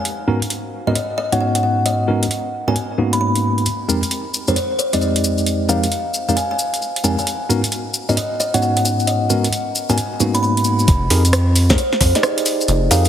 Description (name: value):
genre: UK garage, two-step garage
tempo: 133 BPM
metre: 4/4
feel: swing 64% on 16ths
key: unclear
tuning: A4 = 442 Hz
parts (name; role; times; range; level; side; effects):
- kalimba; melody; 0.0-13.1 s; C5 to Cb6; -21 LUFS; equal; dub echo
- garage drum kit; drums; 0.1-13.1 s; hi-hat, rim click, snare drum; -21 LUFS; right 1 dB; overdrive, studio reverb
- tine electric piano; stabs; 0.3-13.1 s; F2 to D5; -19 LUFS; equal; overdrive, fast stereo tremolo
- cabasa; percussion; 3.7-13.1 s; none; -25 LUFS; left 2 dB; none
- rubbery square bass; bass; 10.9-13.1 s; F1 to F2; -15 LUFS; equal; none
- electronic kick drum; drums; 10.9-12.1 s; none; -16 LUFS; equal; overdrive, studio reverb
room: moderate lush hall reverb, RT60 2.0 s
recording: heavily compressed radio sound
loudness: -16 LUFS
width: side -10 dB against mid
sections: 0.0-10.9 A section; 10.9-13.1 B section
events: drop 10.9-13.1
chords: 0.1 Abm11; 3.7 Fm11; 7.3 Abm11; 10.9 Fm11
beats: | 0.05 0.50 0.95 1.41 | 1.86 2.31 2.76 3.21 | 3.66 4.11 4.56 5.01 | 5.46 5.92 6.37 6.82 | 7.27 7.72 8.17 8.62 | 9.07 9.53 9.98 10.43 | 10.88 11.33 11.78 12.23 | 12.68